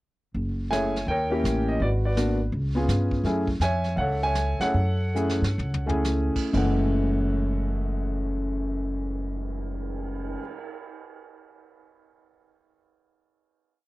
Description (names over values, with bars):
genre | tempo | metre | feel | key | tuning
jazz piano trio | 116-167 BPM | 4/4 | swing 64% on 8ths | F# minor | A4 = 440 Hz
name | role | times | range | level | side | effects
upright bass | bass | 0.3-10.3 s | F#1 to G2 | -26 LUFS | equal | none
vintage brush drum kit | drums | 0.4-10.6 s | brushed snare drum, crash cymbal, cymbal swell, hi-hat, kick drum, snare drum, toms | -36 LUFS | right 1 dB | none
warm grand piano | melody | 0.7-10.4 s | F#2 to G#5 | -26 LUFS | equal | none
room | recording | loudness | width
little or no reverb | dry, close 1970s-style studio recording | -23 LUFS | side -18 dB against mid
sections
0.4-6.5 A section; 6.5-10.7 final chord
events
slowing down 3.2-6.5; drum fill 5.2-6.0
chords
0.4 F#m9; 1.1 D#7b9; 1.8 G#m7b5; 2.5 C#7; 3.2 F#m9